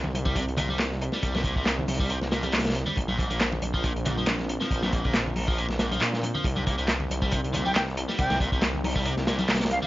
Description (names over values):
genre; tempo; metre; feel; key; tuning
breakbeat, breaks; 138 BPM; 4/4; swing 54% on 16ths; C minor; A4 = 441 Hz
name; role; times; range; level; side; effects
warbly tape-like pad; sustained chords; 0.1-9.9 s; F3 to C5; -37 LUFS; equal; chorus, built-in reverb, phaser, sidechain pumping
detuned saw bass; bass; 0.0-9.8 s; Bb1 to Bb2; -30 LUFS; equal; tube saturation
congas; percussion; 0.0-9.9 s; none; -33 LUFS; left 1 dB; none
crunchy breakbeat drum kit; drums; 0.1-9.8 s; hi-hat, kick drum, snare drum; -28 LUFS; equal; none
biting overdriven guitar; riff; 0.3-9.9 s; Ab2 to G3; -31 LUFS; equal; analog delay
electronic handclaps; drums; 0.8-9.6 s; none; -28 LUFS; equal; none
bright silver concert flute; melody; 7.7-9.9 s; F5 to G5; -29 LUFS; equal; small speaker sound, vintage 12-bit sampler grit, analog delay
room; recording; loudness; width
light reverb; dry, gritty hardware recording, vinyl crackle, nothing above 7.5 kHz; -24 LUFS; side -17 dB against mid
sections
0.0-9.9 A section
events
none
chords
0.0 Cm7; 3.0 Bbadd9; 6.4 Cm7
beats
0.36 0.79 | 1.23 1.66 2.10 2.53 | 2.97 3.40 3.84 4.27 | 4.71 5.14 5.58 6.01 | 6.45 6.88 7.32 7.75 | 8.19 8.62 9.05 9.49